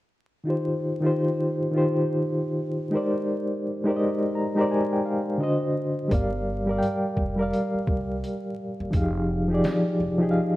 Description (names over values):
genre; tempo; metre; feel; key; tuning
lo-fi hip hop; 85 BPM; 4/4; swing 62% on 16ths; unclear; A4 = 438 Hz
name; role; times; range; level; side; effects
reed electric piano; accompaniment; 0.4-10.6 s; D3 to Bb5; -23 LUFS; equal; fast tremolo, low-pass filter
upright bass; bass; 6.1-10.3 s; F1 to C2; -31 LUFS; equal; none
trip hop sampler-style drum kit; drums; 6.1-9.8 s; hi-hat, kick drum, snare drum; -27 LUFS; equal; vintage 12-bit sampler grit
room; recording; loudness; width
light reverb, digital ambience; rough home demo mix, vinyl crackle; -23 LUFS; side -16 dB against mid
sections
0.5-10.6 A section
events
reed electric piano fill 4.0-6.1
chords
0.5 Eb69; 2.9 Abmaj9#11; 5.4 D7b9; 6.1 Gm7; 8.9 Fm9